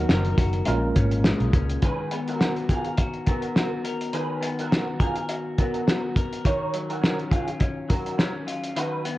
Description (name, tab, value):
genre	indie pop, bedroom pop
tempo	104 BPM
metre	4/4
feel	swing 55% on 16ths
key	unclear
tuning	A4 = 440 Hz
part	electric guitar through a small old amp	accompaniment	0.0-9.2 s	Bb2 to A#4	-30 LUFS	left 3 dB	wide subtle chorus, warbly pitch drift
part	tine electric piano	accompaniment	0.0-1.8 s	F#3 to A#4	-28 LUFS	right 2 dB	overdrive, fast stereo tremolo, cassette tape
part	vintage muted picked electric bass	bass	0.0-1.8 s	F#1 to Db2	-24 LUFS	equal	none
part	cloth-damped thuddy drum kit	drums	0.1-9.2 s	hi-hat, kick drum, snare drum	-24 LUFS	equal	vintage 12-bit sampler grit
part	electric guitar through a small old amp	second line	1.8-9.0 s	F4 to Db5	-30 LUFS	right 2 dB	ensemble chorus, slapback echo
room	light reverb, small room reverb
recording	worn, warbling old tape, cassette tape, warbly pitch drift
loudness	-22 LUFS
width	side -16 dB against mid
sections	0.0-1.8 A section; 1.8-9.2 B section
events	none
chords	0.0 Bmaj7; 0.7 Bbm7; 1.8 Abm9/Eb; 6.4 Ebm9